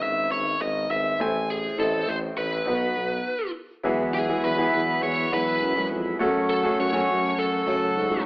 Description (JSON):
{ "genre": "piano-driven pop", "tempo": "102 BPM", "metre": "4/4", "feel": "straight", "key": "E major", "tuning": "A4 = 438 Hz", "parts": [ { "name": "biting lead guitar", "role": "melody", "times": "0.0-8.2 s", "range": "G#4 to G#5", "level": "-25 LUFS", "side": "equal", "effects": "overdrive" }, { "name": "bright upright piano", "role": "accompaniment", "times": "0.0-8.3 s", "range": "G#2 to G#5", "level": "-27 LUFS", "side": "equal", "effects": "none" }, { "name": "warm tuba", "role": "bass", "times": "0.0-8.2 s", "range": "G#1 to G#2", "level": "-29 LUFS", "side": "equal", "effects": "none" }, { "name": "tonewheel organ", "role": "sustained chords", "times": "3.8-8.3 s", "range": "G#4 to C#6", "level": "-32 LUFS", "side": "equal", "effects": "slow rotary speaker" }, { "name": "fingerpicked plugged-in steel-string acoustic guitar", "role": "riff", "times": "3.8-8.3 s", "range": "E2 to F#4", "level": "-29 LUFS", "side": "right 1 dB", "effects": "none" } ], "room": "wet large studio reverb, RT60 0.9 s", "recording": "band playing live in one room, AM radio sound", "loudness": "-22 LUFS", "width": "side -25 dB against mid", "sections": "0.0-3.8 A section; 3.8-8.3 B section", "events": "stop 3.3-3.8", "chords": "0.0 C#m7/G#; 1.2 Am; 2.7 B; 3.8 Eadd9; 6.2 F#m" }